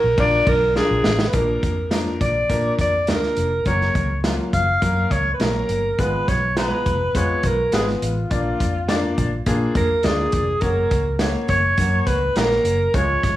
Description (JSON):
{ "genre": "uptempo 1960s-style soul", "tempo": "103 BPM", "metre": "4/4", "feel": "straight", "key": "unclear", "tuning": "A4 = 440 Hz", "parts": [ { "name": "warm alto saxophone", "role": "melody", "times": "0.0-13.4 s", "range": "F4 to F5", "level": "-21 LUFS", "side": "equal", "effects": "plate reverb" }, { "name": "vintage muted fingered electric bass", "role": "bass", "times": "0.0-13.4 s", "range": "F1 to Bb2", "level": "-24 LUFS", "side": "equal", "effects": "none" }, { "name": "bright upright piano", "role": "accompaniment", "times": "0.2-13.3 s", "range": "F3 to Bb5", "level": "-25 LUFS", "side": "left 3 dB", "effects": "plate reverb" }, { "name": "vintage drum kit", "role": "drums", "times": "0.2-13.4 s", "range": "hi-hat, kick drum, ride cymbal, snare drum", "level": "-24 LUFS", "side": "right 1 dB", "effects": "none" } ], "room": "moderate club reverb, RT60 0.8 s", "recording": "vinyl crackle, studio reverb", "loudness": "-17 LUFS", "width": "side -14 dB against mid", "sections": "0.0-1.3 A section; 1.3-13.4 B section", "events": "drum fill 0.8-1.3", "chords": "0.2 Bb; 3.7 Gb; 6.0 Fdim; 8.3 Bb; 10.6 Gb" }